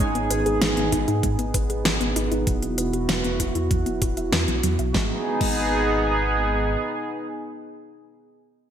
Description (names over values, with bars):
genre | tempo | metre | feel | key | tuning
synthwave | 97 BPM | 4/4 | straight | G# minor | A4 = 441 Hz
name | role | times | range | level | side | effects
chorused pulse-width pad | sustained chords | 0.0-8.2 s | B3 to G#4 | -24 LUFS | right 2 dB | sidechain pumping
soft round pluck | arpeggios | 0.0-5.6 s | F#3 to E5 | -30 LUFS | equal | chorus, digital delay
dark detuned saw bass | bass | 0.0-6.8 s | E1 to G#2 | -27 LUFS | equal | sidechain pumping
electronic kick drum | drums | 0.0-5.6 s | none | -26 LUFS | equal | studio reverb
pop drum kit | drums | 0.0-5.6 s | crash cymbal, hi-hat, snare drum | -26 LUFS | equal | studio reverb, gated reverb
room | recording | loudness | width
moderate lush hall reverb, RT60 1.7 s, digital ambience | bright 1980s-style digital production | -20 LUFS | side -9 dB against mid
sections
0.0-4.9 A section; 4.9-7.4 B section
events
filter sweep on detuned saw bass 0.0-4.9; filter sweep on analog synth pad 0.0-4.9; filter sweep on synth arpeggio sound 0.0-4.9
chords
0.0 G#m; 2.5 Esus2; 4.9 G#m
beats
| 0.00 0.61 1.23 1.85 | 2.47 3.09 3.71 4.33 | 4.94 5.56 6.18 6.80